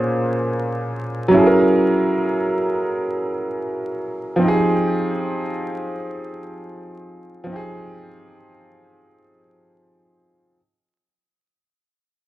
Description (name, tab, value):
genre	hip hop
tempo	free time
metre	none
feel	none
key	F minor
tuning	A4 = 445 Hz
part	clear upright piano	solo	0.0-10.6 s	Bb2 to C5	-18 LUFS	right 1 dB	low-pass filter
room	light reverb, small room reverb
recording	dark, warm production, vinyl crackle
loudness	-18 LUFS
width	side -15 dB against mid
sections	0.0-10.6 A section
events	fade-out 0.0-10.6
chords	0.0 Bbm9; 1.3 Gb9; 4.4 Fm7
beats	free time